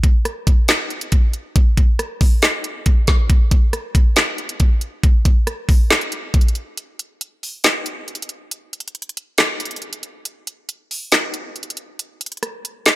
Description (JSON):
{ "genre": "hip hop", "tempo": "138 BPM", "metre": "4/4", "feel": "half-time", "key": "none", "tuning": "none", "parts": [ { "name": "trap drum kit", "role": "drums", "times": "0.0-13.0 s", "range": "handclaps, hi-hat, kick drum, rim click, snare drum", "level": "-15 LUFS", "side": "equal", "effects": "none" } ], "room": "little or no reverb", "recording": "none", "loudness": "-15 LUFS", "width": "side -17 dB against mid", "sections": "0.0-6.8 A section; 6.8-13.0 B section", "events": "break 6.8-13.0", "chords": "none" }